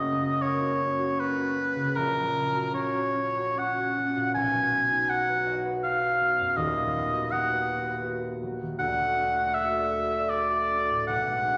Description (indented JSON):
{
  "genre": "classical, romantic duo for oboe and harp",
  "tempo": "69-82 BPM",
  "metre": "3/4",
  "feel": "rubato",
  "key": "unclear",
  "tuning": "A4 = 440 Hz",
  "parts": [
    { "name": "clear oboe", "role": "melody", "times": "0.0-11.6 s", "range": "A#4 to G#5", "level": "-28 LUFS", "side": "equal", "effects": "none" },
    { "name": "concert harp", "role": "accompaniment", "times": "0.0-11.6 s", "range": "D#1 to D#5", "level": "-33 LUFS", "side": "equal", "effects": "none" }
  ],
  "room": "wet scoring stage reverb, RT60 2.0 s",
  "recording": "none",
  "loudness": "-27 LUFS",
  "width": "mono",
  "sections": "0.0-11.6 A section",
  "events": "none",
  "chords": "0.0 F#; 2.0 F#/A#; 4.3 B; 6.6 B/D#; 8.8 D",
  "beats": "0.41 1.19 | 1.95 2.74 3.58 | 4.35 5.09 5.83 | 6.57 7.32 8.05 | 8.79 9.53 10.30 | 11.08"
}